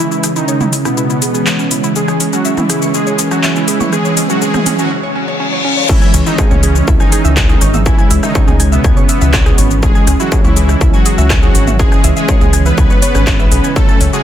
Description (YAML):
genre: melodic techno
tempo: 122 BPM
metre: 4/4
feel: straight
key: C# minor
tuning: A4 = 440 Hz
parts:
  - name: soft supersaw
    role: melody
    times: 0.0-14.2 s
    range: B2 to B4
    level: -18 LUFS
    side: equal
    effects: sidechain pumping, ping-pong delay
  - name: woody wave-folded pluck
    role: arpeggios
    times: 0.0-14.2 s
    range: C#4 to A6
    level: -21 LUFS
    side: right 2 dB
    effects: chorus, sidechain pumping, tape echo
  - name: brassy analog pad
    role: stabs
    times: 0.0-14.2 s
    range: C#3 to C#4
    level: -17 LUFS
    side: right 2 dB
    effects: chorus, sidechain pumping, tape echo
  - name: bowed-like drone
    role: drone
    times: 0.0-14.2 s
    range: C#3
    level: -28 LUFS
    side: right 2 dB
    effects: none
  - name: riser and reverse cymbal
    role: sound effects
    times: 2.8-5.9 s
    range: none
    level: -22 LUFS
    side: left 3 dB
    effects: none
  - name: house drum kit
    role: drums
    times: 0.1-14.2 s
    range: crash cymbal, handclaps, hi-hat, rim click, shaker, toms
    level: -18 LUFS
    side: left 1 dB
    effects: none
  - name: electronic kick drum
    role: drums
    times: 5.9-13.9 s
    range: none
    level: -12 LUFS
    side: equal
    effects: distortion
  - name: round analog bass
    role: bass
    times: 6.1-14.1 s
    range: G#1 to C#2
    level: -12 LUFS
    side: equal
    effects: sidechain pumping
room: digital ambience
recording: dense, heavily limited modern master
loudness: -9 LUFS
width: side -10 dB against mid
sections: 0.0-5.9 A section; 5.9-14.2 B section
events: build-up 0.0-5.9; filter sweep on supersaw synth 0.0-5.9; filter sweep on analog synth pad 0.0-5.9; reverse cymbal 4.9-5.9; drop 5.9-14.2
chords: 0.0 C#m